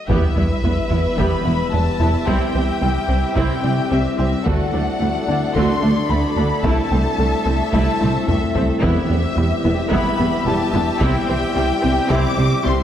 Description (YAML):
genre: cinematic, hybrid orchestral and electronic film score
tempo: 110 BPM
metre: 4/4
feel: straight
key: E minor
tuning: A4 = 440 Hz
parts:
  - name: clear studio violin section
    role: melody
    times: 0.0-12.8 s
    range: E5 to D6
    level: -25 LUFS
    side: left 4 dB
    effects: none
  - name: rich studio violin section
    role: second line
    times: 0.1-12.8 s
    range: G4 to E5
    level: -28 LUFS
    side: left 1 dB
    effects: none
  - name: clear symphonic viola section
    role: accompaniment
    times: 0.1-12.7 s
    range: G3 to G4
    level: -26 LUFS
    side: right 1 dB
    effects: none
  - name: dark French horn section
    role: sustained chords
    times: 0.1-12.8 s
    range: G3 to E4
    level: -27 LUFS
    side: left 1 dB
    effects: none
  - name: metallic inharmonic drone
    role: sustained chords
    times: 0.8-12.8 s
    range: G3 to E5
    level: -26 LUFS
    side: left 1 dB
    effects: chorus, built-in reverb
  - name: woody wave-folded pluck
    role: arpeggios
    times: 0.1-12.8 s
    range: C3 to A4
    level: -27 LUFS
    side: left 3 dB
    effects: none
  - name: smooth synth bass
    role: riff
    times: 0.1-12.8 s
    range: C2 to E3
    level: -23 LUFS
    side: right 1 dB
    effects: none
  - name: rich symphonic cello section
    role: bass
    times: 0.1-12.7 s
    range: C2 to C3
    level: -25 LUFS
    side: right 2 dB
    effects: none
  - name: rich symphonic double bass section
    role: bass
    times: 0.1-12.7 s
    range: E1 to D2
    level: -26 LUFS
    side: right 2 dB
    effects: none
  - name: taiko ensemble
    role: drums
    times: 0.1-12.6 s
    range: none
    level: -26 LUFS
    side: equal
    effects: none
  - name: sub drop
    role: sound effects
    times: 0.1-2.3 s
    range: none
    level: -26 LUFS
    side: equal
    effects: none
room: wet scoring stage reverb, RT60 1.6 s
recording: none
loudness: -16 LUFS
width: side -10 dB against mid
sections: 0.1-12.8 A section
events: impact 0.1-2.3; drum fill 8.0-8.8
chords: 0.1 Em; 2.3 C; 4.5 D; 6.6 Am/C; 8.8 Em; 11.0 C